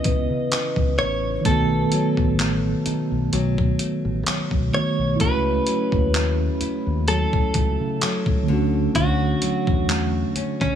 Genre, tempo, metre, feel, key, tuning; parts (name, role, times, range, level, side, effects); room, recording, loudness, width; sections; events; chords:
contemporary R&B; 64 BPM; 4/4; swing 54% on 16ths; A4 = 438 Hz
direct-recorded clean electric guitar; melody; 0.0-10.8 s; C#4 to D#5; -26 LUFS; equal; tape echo
mellow tine electric piano; accompaniment; 0.0-10.8 s; C#3 to F#4; -25 LUFS; right 4 dB; medium stereo tremolo
nylon-string guitar; arpeggios; 0.0-10.8 s; B2 to E4; -28 LUFS; left 6 dB
dusty soul sampler-style drum kit; drums; 0.0-10.8 s; handclaps, hi-hat, kick drum; -24 LUFS; equal
deep dub fingered electric bass; bass; 0.1-10.8 s; A1 to C#3; -24 LUFS; left 1 dB
little or no reverb; small room ambience; -19 LUFS; side -9 dB against mid
0.0-10.8 A section
0.0 C#m9; 1.5 B7; 5.2 A6/C#; 8.5 Dmaj7